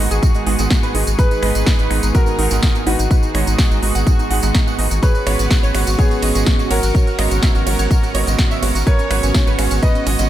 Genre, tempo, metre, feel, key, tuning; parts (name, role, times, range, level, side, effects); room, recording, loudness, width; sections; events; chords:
progressive house; 125 BPM; 4/4; straight; G# minor; A4 = 441 Hz
warm grand piano; melody; 0.0-10.3 s; B3 to D#5; -25 LUFS; left 1 dB; sidechain pumping, tape echo
soft supersaw; second line; 0.0-10.3 s; F#4 to D#5; -29 LUFS; right 2 dB; sidechain pumping, tape echo
lush unison pad; sustained chords; 0.0-10.3 s; C#3 to G#4; -28 LUFS; right 1 dB; chorus, sidechain pumping
wide unison pluck; arpeggios; 0.0-10.2 s; G#3 to F#5; -27 LUFS; right 2 dB; auto-pan, sidechain pumping, tape echo
warm grand piano; stabs; 0.0-10.3 s; G#2 to F#5; -24 LUFS; right 5 dB; sidechain pumping, tape echo
round analog bass; bass; 0.0-10.3 s; G#1; -19 LUFS; equal; sidechain pumping
twinkling granular texture; texture; 0.0-10.3 s; C#6; -32 LUFS; equal; built-in reverb, sidechain pumping
big-room dance drum kit; drums; 0.1-10.3 s; finger snaps, hi-hat, ride cymbal, snare drum; -24 LUFS; equal
tambourine; percussion; 0.1-10.3 s; -30 LUFS; right 3 dB
electronic kick drum; drums; 0.2-9.9 s; -15 LUFS; equal
little or no reverb; -14 LUFS; side -12 dB against mid
0.0-10.3 A section
0.0 G#m; 5.0 F#sus4/G#